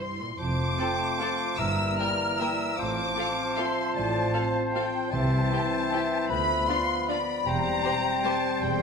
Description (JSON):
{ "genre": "classical", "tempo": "153 BPM", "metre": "3/4", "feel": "uneven beats, rubato", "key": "F major", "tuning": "A4 = 440 Hz", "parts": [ { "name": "warm studio violin section", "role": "melody", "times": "0.0-8.8 s", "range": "G5 to F6", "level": "-30 LUFS", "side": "left 4 dB", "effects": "none" }, { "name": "warm studio violin section", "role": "second line", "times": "0.0-8.3 s", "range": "F4 to A5", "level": "-36 LUFS", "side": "left 2 dB", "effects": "none" }, { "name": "mellow bassoon", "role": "accompaniment", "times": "0.0-8.8 s", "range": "E3 to G3", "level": "-34 LUFS", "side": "right 2 dB", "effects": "none" }, { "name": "warm studio viola section", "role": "accompaniment", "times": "0.0-8.3 s", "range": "G3 to G4", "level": "-39 LUFS", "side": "equal", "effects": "none" }, { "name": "warm studio cello section", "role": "bass", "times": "0.0-8.8 s", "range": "D2 to C3", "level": "-36 LUFS", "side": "right 2 dB", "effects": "none" }, { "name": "hollow concert flute", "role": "second line", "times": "0.4-8.8 s", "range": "G5 to B5", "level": "-35 LUFS", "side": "equal", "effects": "none" }, { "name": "warm oboe", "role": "second line", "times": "0.4-8.8 s", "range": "Bb4 to C5", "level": "-34 LUFS", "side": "right 1 dB", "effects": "none" }, { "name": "mellow French horn section", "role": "sustained chords", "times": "0.4-8.8 s", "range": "E3 to C4", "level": "-34 LUFS", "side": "left 5 dB", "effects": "none" }, { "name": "dark studio double bass section", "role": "bass", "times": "0.4-8.8 s", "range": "E1 to D2", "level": "-33 LUFS", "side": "right 1 dB", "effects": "none" }, { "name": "mellow clarinet", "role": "second line", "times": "0.8-8.7 s", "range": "C5 to G5", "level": "-34 LUFS", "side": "equal", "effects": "none" }, { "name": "timpani", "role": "percussion", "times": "1.6-2.2, 5.1-5.7 s", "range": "G2 to C3", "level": "-38 LUFS", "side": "equal", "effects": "none" } ], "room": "wet scoring stage reverb, RT60 1.5 s", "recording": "minimal, uncompressed stereo recording", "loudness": "-24 LUFS", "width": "side -5 dB against mid", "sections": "0.4-8.8 A section", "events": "none", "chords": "0.4 F; 1.6 Edim/G; 2.8 F/A; 5.1 C; 6.3 Bdim/D; 7.5 C/E", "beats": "0.00 | 0.39 0.79 1.20 | 1.59 1.99 2.40 | 2.79 3.17 3.58 | 3.96 4.35 4.75 | 5.13 5.52 5.92 | 6.30 6.68 7.09 | 7.46 7.84 8.24 | 8.62" }